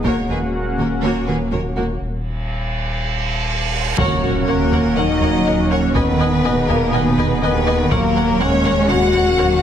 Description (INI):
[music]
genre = cinematic, hybrid orchestral and electronic film score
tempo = 122 BPM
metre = 4/4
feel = straight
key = unclear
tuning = A4 = 437 Hz
[part]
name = warm studio viola section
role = accompaniment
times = 0.0-9.5 s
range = Bb3 to Eb5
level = -25 LUFS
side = equal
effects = low-pass filter
[part]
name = chorused pulse-width pad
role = sustained chords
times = 0.0-9.6 s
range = Bb3 to Gb5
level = -24 LUFS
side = right 1 dB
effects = low-pass filter
[part]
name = mellow French horn section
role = sustained chords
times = 0.0-9.6 s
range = Gb3 to Gb4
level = -21 LUFS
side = left 4 dB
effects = low-pass filter
[part]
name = dark symphonic cello section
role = bass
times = 0.0-1.8, 5.0-9.6 s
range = Eb2 to Ab3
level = -22 LUFS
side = right 3 dB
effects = none
[part]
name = dark symphonic double bass section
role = bass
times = 0.0-9.6 s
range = Eb2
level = -23 LUFS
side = right 3 dB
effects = none
[part]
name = saturated sub bass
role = bass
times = 0.0-9.6 s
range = Eb1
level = -26 LUFS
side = equal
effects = none
[part]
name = solo taiko drums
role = drums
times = 0.0-1.0, 4.0-9.4 s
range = none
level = -25 LUFS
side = equal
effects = none
[part]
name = warm symphonic violin section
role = second line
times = 0.1-9.6 s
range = Gb4 to Gb5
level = -24 LUFS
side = left 2 dB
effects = none
[part]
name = reverse cymbal and impact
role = sound effects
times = 2.3-5.9 s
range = none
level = -24 LUFS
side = right 2 dB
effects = none
[part]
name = warm symphonic violin section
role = melody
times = 4.0-9.5 s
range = Gb5 to Ab5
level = -28 LUFS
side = left 3 dB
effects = low-pass filter
[sound]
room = wet recital hall reverb, RT60 1.3 s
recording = heavily compressed radio sound, multiband compression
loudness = -15 LUFS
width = side -9 dB against mid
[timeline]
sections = 0.0-4.0 A section; 4.0-9.6 B section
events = filter sweep 0.0-4.0; break 2.0-4.0; reverse cymbal 2.3-4.0; drum fill 3.2-4.0; band accent 4.0-4.5; impact 4.0-5.9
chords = 0.0 Gb/Eb; 2.0 N.C.; 4.0 Gb/Eb; 5.9 Abm/Eb; 7.9 Gb/Eb